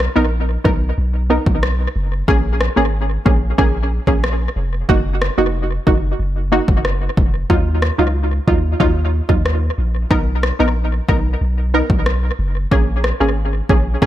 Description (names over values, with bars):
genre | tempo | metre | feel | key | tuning
dancehall | 92 BPM | 4/4 | straight | unclear | A4 = 440 Hz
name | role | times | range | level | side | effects
punchy chord stab | accompaniment | 0.0-14.1 s | Gb3 to A#4 | -19 LUFS | right 1 dB | chorus, tape echo
punchy sub bass | bass | 0.0-14.1 s | F1 to Eb2 | -18 LUFS | equal | none
deep house drum kit | drums | 0.0-14.1 s | kick drum, rim click | -18 LUFS | equal | tape echo
room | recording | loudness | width
little or no reverb | echo-heavy mix | -14 LUFS | side -13 dB against mid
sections
0.0-14.1 A section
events
none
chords
0.0 Bmaj7; 2.3 Bbm7; 4.9 Gb6; 7.5 Ebmadd9; 10.1 Bmaj7; 12.7 Bbm7